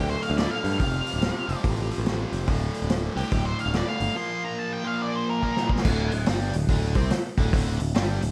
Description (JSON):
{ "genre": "blues rock power trio and southern rock", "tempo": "142 BPM", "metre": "4/4", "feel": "swing 63% on 8ths", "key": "unclear", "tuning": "A4 = 440 Hz", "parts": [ { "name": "octave-fuzz lead guitar", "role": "melody", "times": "0.0-5.7 s", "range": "G4 to C6", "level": "-33 LUFS", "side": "equal", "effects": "distortion" }, { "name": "biting overdriven guitar", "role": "riff", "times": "0.0-8.3 s", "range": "D2 to C4", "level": "-32 LUFS", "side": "equal", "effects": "none" }, { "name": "modern bright picked electric bass", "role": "bass", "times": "0.0-8.3 s", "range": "D1 to G2", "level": "-30 LUFS", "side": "equal", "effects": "none" }, { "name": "vintage drum kit", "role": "drums", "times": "0.2-8.3 s", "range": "crash cymbal, hi-hat, kick drum, snare drum", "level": "-29 LUFS", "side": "equal", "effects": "none" } ], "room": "light reverb", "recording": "none", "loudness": "-25 LUFS", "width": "mono", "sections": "0.0-5.8 A section; 5.8-8.3 B section", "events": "drum fill 5.4-5.8", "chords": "0.0 D5; 0.8 F; 2.5 D5; 4.2 Bb5; 5.8 N.C.", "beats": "0.37 | 0.79 1.22 1.64 2.06 | 2.48 2.90 3.32 3.74 | 4.16 4.58 5.00 5.42 | 5.85 6.27 6.68 7.11 | 7.52 7.94" }